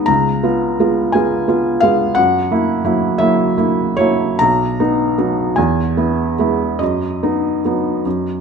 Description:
classical, romantic nocturne for solo piano; 47-59 BPM (dotted quarters); 6/8; rubato; B major; A4 = 436 Hz
felt-muted upright piano; solo; 0.0-8.4 s; B1 to A#5; -14 LUFS; right 1 dB
light reverb; close, detailed microphones; -14 LUFS; side -6 dB against mid
0.0-8.4 A section
0.1 C#7; 2.2 F#7; 4.4 B; 5.6 E; 6.8 B/F#
| 0.09 1.16 | 2.18 3.21 | 4.41 5.57 | 6.80 8.05

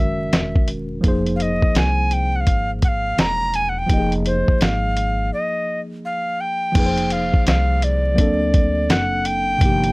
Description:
hip hop, jazz-hop; 84 BPM; 4/4; swing 63% on 16ths; F minor; A4 = 440 Hz
tenor recorder; melody; 0.0-9.9 s; C5 to Bb5; -22 LUFS; equal
mellow tine electric piano; accompaniment; 0.0-9.9 s; C3 to Eb5; -24 LUFS; equal; medium stereo tremolo
upright bass; bass; 0.0-9.9 s; Fb1 to D2; -23 LUFS; equal
lo-fi sampler-style drum kit; drums; 0.3-9.9 s; crash cymbal, hi-hat, kick drum, snare drum; -18 LUFS; equal
little or no reverb; dry, gritty hardware recording, vinyl crackle; -17 LUFS; side -25 dB against mid
0.0-6.8 A section; 6.8-9.9 B section
break 5.3-6.8
0.0 Gb7; 1.0 Fm7; 8.2 D7b13
0.33 | 1.04 1.76 2.47 3.19 | 3.90 4.61 5.33 6.04 | 6.76 7.47 8.19 8.90 | 9.61

